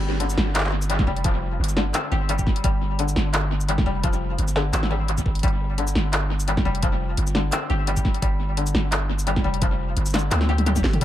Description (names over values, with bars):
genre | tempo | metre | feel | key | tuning
half-time drum and bass | 172 BPM | 4/4 | swing 54% on 16ths, half-time | unclear | A4 = 440 Hz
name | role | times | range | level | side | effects
koto | arpeggios | 0.0-11.0 s | D3 to G4 | -28 LUFS | left 5 dB | vintage 12-bit sampler grit, dub echo
long sustained 808-style bass | bass | 0.0-11.0 s | F1 to D2 | -24 LUFS | equal | none
drum and bass drum kit | drums | 0.2-11.0 s | crash cymbal, handclaps, hi-hat, shaker, snare drum, toms | -26 LUFS | equal | tape echo
electronic kick drum | drums | 1.0-11.0 s | none | -23 LUFS | equal | none
room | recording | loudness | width
light reverb | echo-heavy mix | -20 LUFS | side -12 dB against mid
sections
0.0-11.0 A section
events
drum fill 10.3-11.0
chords
0.0 G5